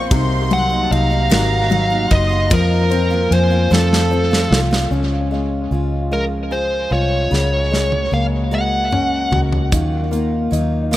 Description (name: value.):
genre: six-eight pop ballad.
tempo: 50 BPM (dotted quarters).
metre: 6/8.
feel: straight.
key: unclear.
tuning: A4 = 440 Hz.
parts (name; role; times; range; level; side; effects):
warm studio violin section; second line; 0.0-4.5 s; Ab5 to Db6; -26 LUFS; right 2 dB; none.
warm grand piano; accompaniment; 0.0-11.0 s; C3 to Bb4; -21 LUFS; left 3 dB; tape echo.
picked steel-string acoustic guitar; arpeggios; 0.0-11.0 s; F2 to Bb4; -26 LUFS; right 4 dB; none.
vintage muted fingered electric bass; bass; 0.0-11.0 s; Gb1 to F2; -19 LUFS; equal; none.
modern studio drum kit; drums; 0.1-11.0 s; hi-hat, kick drum, ride cymbal, rim click, snare drum, toms; -20 LUFS; right 1 dB; tape echo.
smooth overdriven lead guitar; melody; 0.5-9.4 s; A4 to Gb5; -20 LUFS; equal; tape echo.
room: light reverb, small room ambience.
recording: echo-heavy mix.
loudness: -14 LUFS.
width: side -14 dB against mid.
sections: 0.0-4.9 A section; 4.9-11.0 B section.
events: drum fill 3.7-4.9, 7.3-9.7.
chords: 0.1 Cm7b5; 2.5 Fsus4; 3.7 F; 4.9 Db; 7.3 Gbadd9/Db; 9.7 Ebmadd9.